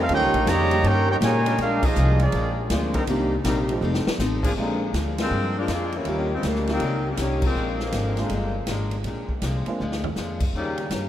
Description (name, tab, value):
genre	jazz, big band swing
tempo	161 BPM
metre	4/4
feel	swing 66% on 8ths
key	Bb mixolydian from 4.6 s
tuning	A4 = 435 Hz
part	warm trumpet section	melody	0.0-2.6 s	Bb3 to Bb5	-24 LUFS	right 1 dB	none
part	clear trombone section	second line	0.0-2.6 s	Bb2 to G4	-30 LUFS	right 2 dB	none
part	bright trombone section	sustained chords	0.0-4.5 s	F3 to Bb4	-34 LUFS	left 1 dB	none
part	upright bass	bass	0.0-11.1 s	F1 to Bb2	-25 LUFS	equal	none
part	picked acoustic archtop guitar	accompaniment	0.1-11.1 s	Bb2 to A4	-30 LUFS	left 3 dB	none
part	warm concert grand piano	accompaniment	0.1-9.8 s	Eb3 to G4	-32 LUFS	right 2 dB	none
part	swinging big-band drum kit	drums	0.1-11.0 s	crash cymbal, hi-hat, kick drum, ride cymbal, snare drum, toms	-30 LUFS	equal	none
part	mellow saxophone section	melody	4.6-10.9 s	Bb2 to F4	-28 LUFS	left 2 dB	none
room	wet cathedral reverb, RT60 5.4 s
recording	in a vast, echoing space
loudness	-21 LUFS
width	side -12 dB against mid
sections	0.0-4.6 A section; 4.6-11.1 B section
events	band accent 1.8, 5.1, 7.4; drum fill 3.8-4.2, 9.8-10.2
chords	0.1 Eb7; 1.6 Bb7; 3.1 Cm7; 3.8 F7; 4.6 Bb7; 6.1 Eb7; 7.6 Bb7; 10.5 Eb7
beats	| 0.10 0.47 0.84 1.21 | 1.59 1.96 2.33 2.71 | 3.08 3.45 3.83 4.20 | 4.57 4.94 5.32 5.69 | 6.06 6.44 6.81 7.18 | 7.56 7.93 8.30 8.68 | 9.05 9.42 9.80 10.17 | 10.54 10.92